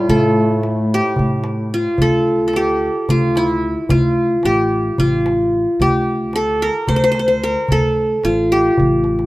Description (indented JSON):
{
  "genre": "Turkish makam ensemble",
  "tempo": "221 BPM (eighths)",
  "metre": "7/8",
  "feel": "straight",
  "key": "unclear",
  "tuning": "A4 = 435 Hz",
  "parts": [
    { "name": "qanun", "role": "melody", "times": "0.0-9.3 s", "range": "E4 to C5", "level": "-16 LUFS", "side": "equal", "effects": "none" },
    { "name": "warm bass clarinet", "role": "second line", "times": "0.0-1.7 s", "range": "G3 to A3", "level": "-26 LUFS", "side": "left 2 dB", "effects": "none" },
    { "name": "warm duduk", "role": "drone", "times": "0.0-2.0 s", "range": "A2", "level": "-26 LUFS", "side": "equal", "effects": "none" },
    { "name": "upright bass", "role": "bass", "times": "0.1-9.3 s", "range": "A1 to A2", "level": "-22 LUFS", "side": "equal", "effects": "none" },
    { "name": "darbuka", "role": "percussion", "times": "0.1-9.3 s", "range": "none", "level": "-20 LUFS", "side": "equal", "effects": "none" }
  ],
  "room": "small room ambience",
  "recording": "rough home demo mix",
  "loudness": "-14 LUFS",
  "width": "side -18 dB against mid",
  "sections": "0.0-2.0 A section; 2.0-9.3 B section",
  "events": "drum fill 9.1",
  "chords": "none",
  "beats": "| 0.09 0.36 0.64 0.91 1.18 1.45 1.72 | 1.99 2.27 2.54 2.81 3.08 3.35 3.62 | 3.90 4.17 4.44 4.71 4.98 5.25 5.53 | 5.80 6.07 6.34 6.61 6.88 7.15 7.42 | 7.70 7.97 8.24 8.51 8.78 9.05"
}